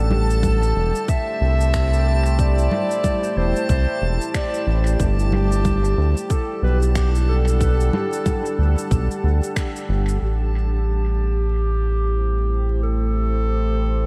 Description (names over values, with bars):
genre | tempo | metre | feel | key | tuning
ambient dub | 92 BPM | 4/4 | swing 60% on 16ths | A dorian | A4 = 442 Hz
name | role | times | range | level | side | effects
mellow clarinet | melody | 0.0-14.1 s | G4 to E5 | -28 LUFS | equal | dub echo
deep dark ambient pad | sustained chords | 0.0-14.1 s | G3 to G5 | -31 LUFS | equal | chorus, built-in reverb
round analog bass | bass | 0.0-14.1 s | E1 to D2 | -21 LUFS | equal | none
backwards swelling texture | texture | 0.0-10.2 s | A5 | -37 LUFS | equal | built-in reverb
electronic congas, shaker and finger snaps | drums | 0.1-10.2 s | none | -32 LUFS | equal | dub echo
electronic kick drum | drums | 0.4-9.7 s | none | -25 LUFS | equal | none
room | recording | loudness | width
moderate cathedral reverb, RT60 4.5 s | dreamy mix soaked in reverb, vinyl crackle | -20 LUFS | mono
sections
0.0-10.2 A section; 10.2-14.1 B section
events
none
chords
0.0 Am7; 5.0 Gmaj9; 10.2 Am7